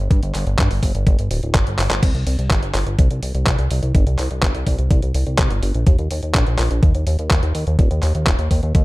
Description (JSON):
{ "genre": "italo disco", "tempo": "125 BPM", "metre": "4/4", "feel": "straight", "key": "unclear", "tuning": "A4 = 440 Hz", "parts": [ { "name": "chorused synth bass", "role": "bass", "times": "0.0-8.8 s", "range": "D1 to G2", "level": "-19 LUFS", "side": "equal", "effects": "none" }, { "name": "detuned 8-bit digital drum machine", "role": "drums", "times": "0.1-8.8 s", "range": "crash cymbal, handclaps, hi-hat", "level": "-23 LUFS", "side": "equal", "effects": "none" }, { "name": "electronic kick drum", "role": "drums", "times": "0.1-8.8 s", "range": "none", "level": "-16 LUFS", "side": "equal", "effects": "none" } ], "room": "little or no reverb", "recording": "dark, warm production", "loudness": "-16 LUFS", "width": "side -20 dB against mid", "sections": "0.0-8.8 A section", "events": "drum fill 1.8", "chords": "none", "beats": "| 0.11 0.59 1.07 1.55 | 2.03 2.51 2.99 3.47 | 3.95 4.43 4.91 5.39 | 5.87 6.35 6.83 7.31 | 7.79 8.27 8.75" }